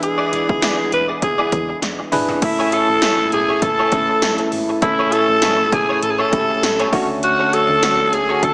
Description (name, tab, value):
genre	1980s-style pop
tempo	100 BPM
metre	4/4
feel	swing 55% on 16ths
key	A major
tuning	A4 = 440 Hz
part	breathy alto saxophone	melody	0.0-8.5 s	E4 to B4	-20 LUFS	equal	none
part	bell-like tine electric piano	accompaniment	0.0-8.5 s	A2 to B4	-25 LUFS	equal	none
part	mellow French horn section	sustained chords	0.0-8.5 s	C#3 to C#5	-30 LUFS	equal	none
part	direct-recorded clean electric guitar	riff	0.0-8.5 s	A3 to D5	-27 LUFS	equal	ensemble chorus, tape echo
part	solid FM bass	bass	0.0-8.5 s	E1 to E2	-35 LUFS	equal	none
part	80s electronic pad drums	drums	0.0-8.5 s	crash cymbal, hi-hat, kick drum, snare drum, tambourine, toms	-25 LUFS	equal	gated reverb on snare and toms, gated reverb
part	warm studio violin section	second line	2.4-8.5 s	E5 to A5	-29 LUFS	equal	tape echo
room	moderate plate reverb, RT60 1.6 s, digital ambience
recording	small speaker sound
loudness	-17 LUFS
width	mono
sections	0.0-2.4 A section; 2.4-8.5 B section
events	drum fill 1.8-2.4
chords	0.0 E7; 2.4 Amaj7; 6.9 Dmaj7